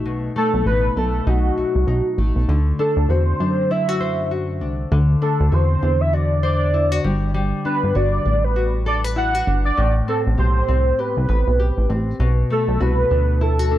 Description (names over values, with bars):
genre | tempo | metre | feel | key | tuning
indie pop, bedroom pop | 99 BPM | 4/4 | swing 60% on 16ths | unclear | A4 = 440 Hz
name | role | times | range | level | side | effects
nylon-string guitar | accompaniment | 0.0-13.8 s | A2 to C5 | -23 LUFS | left 3 dB | lush chorus, vibrato effect
plucky analog bass | bass | 0.0-13.8 s | G1 to F#2 | -19 LUFS | equal | none
warm velvety synth lead | melody | 0.4-13.8 s | F#4 to F#5 | -22 LUFS | right 1 dB | wide subtle chorus
room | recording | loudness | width
small room ambience | none | -17 LUFS | side -13 dB against mid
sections
0.0-12.2 A section; 12.2-13.8 B section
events
none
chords
0.0 B7; 2.5 D9; 7.0 Gmaj9; 9.8 Am9; 12.2 Bm7